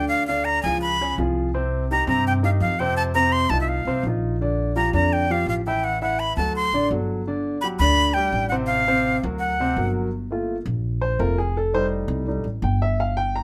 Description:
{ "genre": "Afro-Cuban jazz", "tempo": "168 BPM", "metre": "4/4", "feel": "straight", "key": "G minor", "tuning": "A4 = 436 Hz", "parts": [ { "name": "breathy bright jazz flute", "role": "melody", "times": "0.0-9.9 s", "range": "E5 to C6", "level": "-24 LUFS", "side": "equal", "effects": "none" }, { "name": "clear upright piano", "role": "accompaniment", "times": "0.0-13.4 s", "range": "C3 to Bb5", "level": "-27 LUFS", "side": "equal", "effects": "none" }, { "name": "upright bass", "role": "bass", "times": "0.0-13.4 s", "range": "F1 to G2", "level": "-27 LUFS", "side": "equal", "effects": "none" } ], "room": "moderate club reverb, RT60 0.7 s", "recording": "none", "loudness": "-22 LUFS", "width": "mono", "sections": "0.0-10.1 A section; 10.1-13.4 B section", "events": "upright piano solo 10.1-13.4", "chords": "0.1 Ddim; 0.8 C#7; 1.5 Cm; 3.0 F5; 4.4 Bb6; 5.8 A5; 6.5 D7; 7.3 Gmaj7; 8.7 D7#9/A; 9.4 Daug7; 10.1 Gm7; 11.6 F7" }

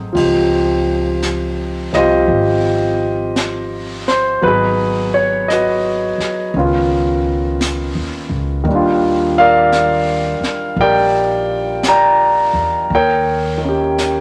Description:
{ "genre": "jazz ballad", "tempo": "56 BPM", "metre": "4/4", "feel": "swing 66% on 8ths", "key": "unclear", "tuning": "A4 = 440 Hz", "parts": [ { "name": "warm concert grand piano", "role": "accompaniment", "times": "0.0-14.2 s", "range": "Eb3 to Bb5", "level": "-16 LUFS", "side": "equal", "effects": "none" }, { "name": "upright bass", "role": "bass", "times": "0.0-14.2 s", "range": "Ab1 to E2", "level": "-25 LUFS", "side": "equal", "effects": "none" }, { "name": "jazz brush drum kit", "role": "drums", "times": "0.1-14.2 s", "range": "brushed snare drum, hi-hat, kick drum, ride cymbal, snare drum", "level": "-28 LUFS", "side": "equal", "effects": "none" } ], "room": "moderate studio reverb, RT60 0.7 s", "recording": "none", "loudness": "-16 LUFS", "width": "mono", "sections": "0.1-14.2 A section", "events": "drum fill 0.0", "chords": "0.1 Dbmaj9#11; 4.4 Abm7; 6.5 Db9; 8.7 Ebmaj9; 12.9 Eb7" }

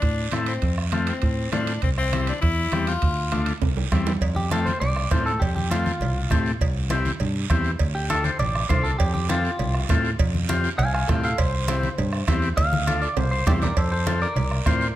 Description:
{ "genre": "latin, cumbia", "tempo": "201 BPM", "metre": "4/4", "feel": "straight", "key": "F major", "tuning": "A4 = 440 Hz", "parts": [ { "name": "clear tenor saxophone", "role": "second line", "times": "0.0-3.4 s", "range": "C4 to F4", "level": "-28 LUFS", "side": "left 4 dB", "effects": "none" }, { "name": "fingered electric bass", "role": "bass", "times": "0.0-14.9 s", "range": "A1 to A2", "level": "-25 LUFS", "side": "equal", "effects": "none" }, { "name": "bombo", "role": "percussion", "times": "0.0-14.8 s", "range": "none", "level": "-26 LUFS", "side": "right 1 dB", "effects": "none" }, { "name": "congas", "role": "percussion", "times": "0.0-14.8 s", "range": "none", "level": "-30 LUFS", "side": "equal", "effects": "none" }, { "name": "guiro", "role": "percussion", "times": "0.0-15.0 s", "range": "none", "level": "-37 LUFS", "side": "right 9 dB", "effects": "none" }, { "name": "timbales and cowbell", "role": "percussion", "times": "0.0-14.8 s", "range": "none", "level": "-33 LUFS", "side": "right 8 dB", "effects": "none" }, { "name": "combo organ", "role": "accompaniment", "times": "0.3-14.9 s", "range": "G3 to C5", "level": "-28 LUFS", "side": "left 4 dB", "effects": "none" }, { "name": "clean electric guitar", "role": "melody", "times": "4.4-14.9 s", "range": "F4 to Ab5", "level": "-27 LUFS", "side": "equal", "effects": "spring reverb" } ], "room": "light reverb", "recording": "none", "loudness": "-20 LUFS", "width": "side -14 dB against mid", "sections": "0.0-4.2 A section; 4.2-13.8 B section; 13.8-15.0 C section", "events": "tenor saxophone solo 0.0-4.2; drum fill 3.6-4.2, 12.6-13.8; clean electric guitar solo 4.2-13.8", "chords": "0.0 F; 1.8 C; 3.0 Dm; 3.6 C; 4.2 F; 6.6 C; 7.8 Dm; 9.0 F; 11.4 C; 12.6 Dm; 13.2 C; 13.8 F" }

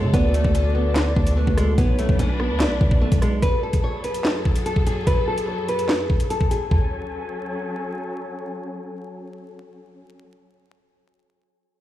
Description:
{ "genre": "hip hop, drill", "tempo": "146 BPM", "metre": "4/4", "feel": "half-time", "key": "F# minor", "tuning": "A4 = 437 Hz", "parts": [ { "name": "nylon-string guitar", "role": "melody", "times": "0.0-7.9 s", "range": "G#3 to C#5", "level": "-26 LUFS", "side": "equal", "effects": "low-pass filter, tape echo" }, { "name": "hollow clarinet-like synth lead", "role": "second line", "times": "0.0-3.4 s", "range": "A4 to D5", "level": "-30 LUFS", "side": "left 1 dB", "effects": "chorus, phaser, tape echo" }, { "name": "warm symphonic string section", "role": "sustained chords", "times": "0.0-10.2 s", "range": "F#2 to G#5", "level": "-30 LUFS", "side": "left 1 dB", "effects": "low-pass filter" }, { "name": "hard-hitting 808-style bass", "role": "bass", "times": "0.0-3.4 s", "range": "B1 to C#3", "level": "-21 LUFS", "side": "equal", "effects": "none" }, { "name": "drill drum kit", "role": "drums", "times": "0.1-6.8 s", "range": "handclaps, hi-hat, kick drum, rim click, snare drum, toms", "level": "-21 LUFS", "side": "equal", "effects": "none" } ], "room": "little or no reverb", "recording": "played on a big sound system in a bare room, large studio reverb, vinyl crackle", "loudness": "-19 LUFS", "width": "side -13 dB against mid", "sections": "0.0-3.4 A section; 3.4-6.7 B section; 6.7-10.0 C section", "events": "filter sweep 3.4-6.7", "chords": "0.1 D; 1.8 Bmadd9; 3.4 F#madd9" }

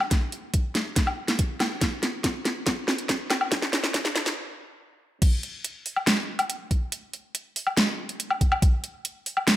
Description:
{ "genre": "dubstep", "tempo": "141 BPM", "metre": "4/4", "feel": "half-time", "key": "none", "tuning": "none", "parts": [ { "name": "dubstep drum kit", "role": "drums", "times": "0.0-9.6 s", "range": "crash cymbal, hi-hat, snare drum, woodblock", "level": "-24 LUFS", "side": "equal", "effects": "studio reverb" }, { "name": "electronic kick drum", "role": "drums", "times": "0.1-8.7 s", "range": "none", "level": "-23 LUFS", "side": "equal", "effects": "overdrive, studio reverb" } ], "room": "light reverb", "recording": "high-pass filter", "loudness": "-24 LUFS", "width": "side -14 dB against mid", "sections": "0.0-5.2 A section; 5.2-9.6 B section", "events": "build-up 0.0-5.2; drum fill 0.0-4.4; filter sweep 0.0-5.2; stop 4.4-5.2; drop 5.2-9.6", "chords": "none" }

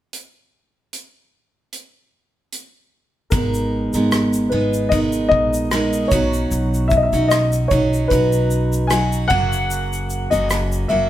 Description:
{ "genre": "acoustic pop", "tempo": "75 BPM", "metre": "4/4", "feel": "swing 55% on 16ths", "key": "unclear", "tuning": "A4 = 440 Hz", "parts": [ { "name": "natural country drum kit", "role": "drums", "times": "0.1-10.9 s", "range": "hi-hat, kick drum, rim click, shaker", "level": "-24 LUFS", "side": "equal", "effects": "none" }, { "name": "dark upright piano", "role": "melody", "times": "3.3-11.1 s", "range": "A#4 to G#5", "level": "-20 LUFS", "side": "left 2 dB", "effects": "none" }, { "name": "picked steel-string acoustic guitar", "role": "accompaniment", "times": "3.3-11.1 s", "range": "F#2 to A#4", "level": "-21 LUFS", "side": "right 2 dB", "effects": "none" }, { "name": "upright bass", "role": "bass", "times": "3.3-11.1 s", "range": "F#1 to B1", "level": "-22 LUFS", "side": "equal", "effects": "none" } ], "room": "moderate stone room reverb, RT60 1.2 s", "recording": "band playing live in one room", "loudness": "-16 LUFS", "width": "side -13 dB against mid", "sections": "0.1-3.3 A section; 3.3-11.1 B section", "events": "none", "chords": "0.1 N.C.; 3.3 G#madd9; 6.1 Badd9; 9.3 F#" }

